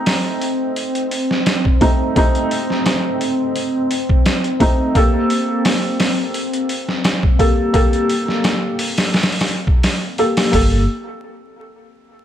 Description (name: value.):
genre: trip hop.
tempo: 86 BPM.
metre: 4/4.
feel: swing 54% on 16ths.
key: G minor.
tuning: A4 = 440 Hz.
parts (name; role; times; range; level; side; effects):
felt-muted upright piano; accompaniment; 0.0-10.8 s; A3 to A4; -19 LUFS; left 1 dB; tremolo, low-pass filter, tape echo.
warbly tape-like pad; sustained chords; 0.0-10.6 s; C4; -22 LUFS; right 1 dB; chorus, built-in reverb.
trip hop sampler-style drum kit; drums; 0.1-10.7 s; hi-hat, kick drum, snare drum; -17 LUFS; equal; none.
deep dub fingered electric bass; bass; 10.5-10.9 s; G1; -16 LUFS; equal; none.
room: light reverb.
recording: vinyl crackle.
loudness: -15 LUFS.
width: side -10 dB against mid.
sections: 0.0-10.5 A section; 10.5-12.2 B section.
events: none.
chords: 0.0 Adim; 5.0 Gmadd9.